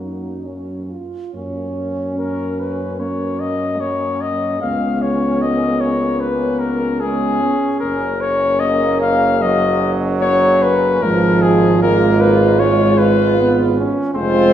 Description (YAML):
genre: classical, hymn-like piece for brass band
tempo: 75 BPM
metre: 4/4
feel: rubato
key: F# major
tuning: A4 = 441 Hz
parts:
  - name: mellow flugelhorn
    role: melody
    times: 0.0-14.5 s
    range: F#4 to E#5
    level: -18 LUFS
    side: left 4 dB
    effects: none
  - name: mellow French horn section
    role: second line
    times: 0.0-14.5 s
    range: C#4 to F4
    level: -22 LUFS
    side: right 6 dB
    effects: none
  - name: mellow euphonium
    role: accompaniment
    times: 0.0-14.5 s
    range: Ab3 to B3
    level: -23 LUFS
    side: left 1 dB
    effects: none
  - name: warm trombone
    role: accompaniment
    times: 0.0-14.5 s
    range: F3 to C#4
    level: -22 LUFS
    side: right 2 dB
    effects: none
  - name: warm tuba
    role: bass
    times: 0.0-14.5 s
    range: F1 to F#2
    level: -22 LUFS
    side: equal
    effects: none
room: wet recital hall reverb, RT60 1.7 s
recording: recorded in a church or concert hall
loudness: -14 LUFS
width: side -10 dB against mid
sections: 0.0-1.3 A section; 1.3-14.5 B section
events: none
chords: 0.0 F#; 4.6 C#5; 7.8 F#; 11.0 Fdim/Ab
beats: 0.44 | 1.34 2.19 3.00 3.81 | 4.62 5.43 6.22 7.02 | 7.82 8.62 9.42 10.22 | 11.03 11.82 12.59 13.37 | 14.15